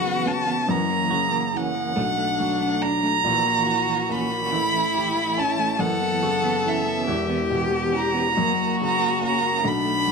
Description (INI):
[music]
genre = acoustic folk-pop ballad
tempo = 47 BPM (dotted quarters)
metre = 6/8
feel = straight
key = unclear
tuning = A4 = 441 Hz
[part]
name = warm violin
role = melody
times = 0.0-10.1 s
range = E5 to B5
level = -23 LUFS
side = right 1 dB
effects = none
[part]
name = clear cello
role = second line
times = 0.0-10.1 s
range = C#4 to A4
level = -26 LUFS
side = left 4 dB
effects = none
[part]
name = warm upright piano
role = accompaniment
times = 0.0-10.1 s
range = E1 to D4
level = -27 LUFS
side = equal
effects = none
[part]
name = semi-hollow electric guitar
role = arpeggios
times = 0.0-10.1 s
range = E3 to G4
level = -29 LUFS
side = right 5 dB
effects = tremolo
[sound]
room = moderate large studio reverb, RT60 0.9 s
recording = close, detailed microphones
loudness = -20 LUFS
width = side -4 dB against mid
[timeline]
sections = 0.0-10.1 A section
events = none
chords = 0.0 F#7sus4; 0.7 F#7; 2.0 Bm7; 3.2 F#7/A#; 4.5 A7; 5.8 F#7sus4; 7.1 C#m7b5/E; 8.3 F#